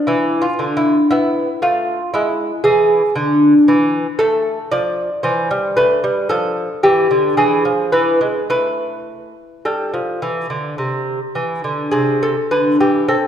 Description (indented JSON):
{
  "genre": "classical, baroque-style dance for lute",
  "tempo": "51-60 BPM",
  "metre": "4/4",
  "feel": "rubato",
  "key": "A minor",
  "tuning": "A4 = 443 Hz",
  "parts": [
    { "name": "lute", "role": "solo", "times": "0.0-13.3 s", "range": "C3 to D5", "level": "-14 LUFS", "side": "equal", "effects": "none" }
  ],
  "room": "wet scoring stage reverb, RT60 1.9 s",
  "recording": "recorded in a church or concert hall",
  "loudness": "-14 LUFS",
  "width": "side -9 dB against mid",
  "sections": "0.0-13.1 A section",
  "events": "none",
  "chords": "0.1 E7; 4.2 A5; 6.3 Dm/F; 7.4 E; 8.5 Am"
}